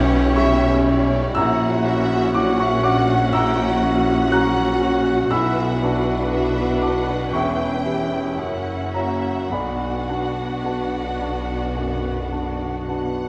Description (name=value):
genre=classical, romantic movement for piano and orchestra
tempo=51-61 BPM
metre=4/4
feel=rubato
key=B minor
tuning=A4 = 441 Hz
part: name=clear baby grand piano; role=melody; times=0.0-13.3 s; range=A#1 to F#6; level=-24 LUFS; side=equal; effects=none
part: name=warm studio violin section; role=melody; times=0.0-13.3 s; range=C#5 to G5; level=-37 LUFS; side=equal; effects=none
part: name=warm studio violin section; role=second line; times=0.0-13.3 s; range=F#4 to G5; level=-29 LUFS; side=equal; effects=none
part: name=rich studio viola section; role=accompaniment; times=0.0-13.3 s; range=B3 to F#4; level=-32 LUFS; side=equal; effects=none
part: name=mellow French horn section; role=sustained chords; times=0.0-12.9 s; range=A#3 to F#4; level=-29 LUFS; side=equal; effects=none
part: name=mellow tuba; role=bass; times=0.0-13.3 s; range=E1 to B1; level=-33 LUFS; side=equal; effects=none
part: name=rich studio cello section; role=bass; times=0.0-13.3 s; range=E2 to B2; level=-30 LUFS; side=equal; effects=none
part: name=warm studio double bass section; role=bass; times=0.0-13.3 s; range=E1 to B1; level=-31 LUFS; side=equal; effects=none
room=wet scoring stage reverb, RT60 1.8 s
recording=none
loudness=-20 LUFS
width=mono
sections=0.0-13.3 A section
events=none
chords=0.0 C#m7b5/B; 1.4 F#7/A#; 5.3 Bm; 7.3 Em7; 8.4 F#7; 9.5 Bm